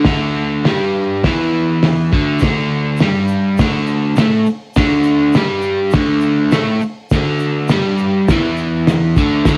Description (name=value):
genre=garage rock duo or trio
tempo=102 BPM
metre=4/4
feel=straight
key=unclear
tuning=A4 = 438 Hz
part: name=overdriven electric guitar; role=riff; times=0.0-9.6 s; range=D2 to A3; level=-17 LUFS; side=equal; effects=cassette tape
part: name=cloth-damped thuddy drum kit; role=drums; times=0.0-9.6 s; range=hi-hat, kick drum, snare drum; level=-19 LUFS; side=equal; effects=cassette tape
part: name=egg shaker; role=percussion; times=2.4-9.6 s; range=none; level=-46 LUFS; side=equal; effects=none
room=moderate studio reverb, RT60 0.6 s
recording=home recording on cassette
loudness=-15 LUFS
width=mono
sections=0.0-9.6 A section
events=none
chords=0.0 D5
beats=| 0.06 0.65 1.24 1.82 | 2.41 3.00 3.59 4.18 | 4.76 5.35 5.94 6.53 | 7.11 7.70 8.29 8.87 | 9.46